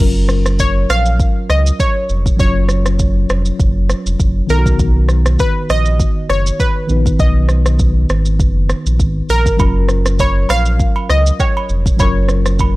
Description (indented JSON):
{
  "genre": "afrobeats",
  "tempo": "100 BPM",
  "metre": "4/4",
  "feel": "swing 55% on 16ths",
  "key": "F# major",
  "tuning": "A4 = 440 Hz",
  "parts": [
    { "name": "analog pluck", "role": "melody", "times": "0.0-12.8 s", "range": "A#4 to E#5", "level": "-20 LUFS", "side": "equal", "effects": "chorus, analog delay" },
    { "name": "mellow tine electric piano", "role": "accompaniment", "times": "0.0-12.8 s", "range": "D#3 to C#5", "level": "-21 LUFS", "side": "left 2 dB", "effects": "medium stereo tremolo" },
    { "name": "sub bass with octave", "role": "bass", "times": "0.0-12.8 s", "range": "E#1 to C#2", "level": "-14 LUFS", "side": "equal", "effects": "none" },
    { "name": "afro-pop drum kit", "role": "drums", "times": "0.3-12.7 s", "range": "kick drum, rim click, shaker", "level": "-16 LUFS", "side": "equal", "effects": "none" },
    { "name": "agogo bells and woodblock", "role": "percussion", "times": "9.6-12.8 s", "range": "none", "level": "-24 LUFS", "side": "right 5 dB", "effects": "none" }
  ],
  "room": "little or no reverb",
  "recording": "dry, gritty hardware recording",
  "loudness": "-12 LUFS",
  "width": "side -19 dB against mid",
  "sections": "0.0-12.8 A section",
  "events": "none",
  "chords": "0.0 F#maj7; 4.5 Bmaj7; 9.6 F#maj7",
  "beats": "0.59 1.19 1.79 | 2.39 2.99 3.59 4.19 | 4.79 5.39 5.99 6.59 | 7.19 7.79 8.39 8.99 | 9.59 10.19 10.79 11.39 | 11.99 12.59"
}